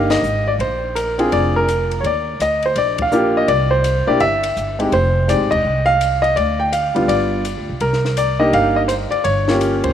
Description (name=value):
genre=jazz piano trio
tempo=166 BPM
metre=4/4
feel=swing 64% on 8ths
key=C minor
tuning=A4 = 440 Hz
part: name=clear baby grand piano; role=melody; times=0.0-9.9 s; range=G3 to G5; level=-16 LUFS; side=equal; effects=none
part: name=upright bass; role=bass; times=0.0-9.9 s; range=E1 to Eb2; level=-22 LUFS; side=right 1 dB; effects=none
part: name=compact cocktail drum kit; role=drums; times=0.1-9.9 s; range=hi-hat, kick drum, ride cymbal, snare drum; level=-30 LUFS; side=left 4 dB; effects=none
room=moderate plate reverb, RT60 2.7 s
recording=1960s-style stereo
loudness=-15 LUFS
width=side -9 dB against mid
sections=0.0-9.9 A section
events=band accent 0.1, 2.9, 5.5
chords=0.0 Cm7 (rootless); 0.6 Bb7; 2.0 Ebmaj7; 3.5 C; 4.9 F7(no3); 6.4 Dmadd11; 7.1 G7; 7.8 Cm7; 9.3 Gm7b5